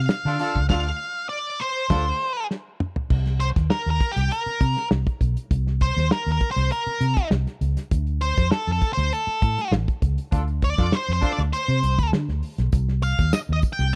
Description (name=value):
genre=funk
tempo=100 BPM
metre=4/4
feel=straight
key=C dorian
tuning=A4 = 440 Hz
part: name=octave-fuzz lead guitar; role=melody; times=0.0-14.0 s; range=G4 to G5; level=-28 LUFS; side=equal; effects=distortion
part: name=vintage muted fingered electric bass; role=bass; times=0.0-13.9 s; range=A1 to D3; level=-25 LUFS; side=equal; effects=none
part: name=damped 70s drum kit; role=drums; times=0.1-14.0 s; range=crash cymbal, hi-hat, kick drum, snare drum, toms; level=-26 LUFS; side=equal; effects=none
part: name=warm horn section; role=second line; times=0.3-2.1, 10.3-11.4 s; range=D4 to A4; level=-31 LUFS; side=equal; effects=none
part: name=tambourine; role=percussion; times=12.7-14.0 s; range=none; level=-46 LUFS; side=equal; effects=none
room=small room reverb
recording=dry, close 1970s-style studio recording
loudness=-23 LUFS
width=mono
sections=0.0-3.1 A section; 3.1-14.0 B section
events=band accent 0.7-3.1, 10.3-12.7; drum fill 2.5-3.1; lead electric guitar solo 3.1-14.0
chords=0.0 Dm7; 3.1 C7(no3); 7.9 Dm7; 12.7 Cm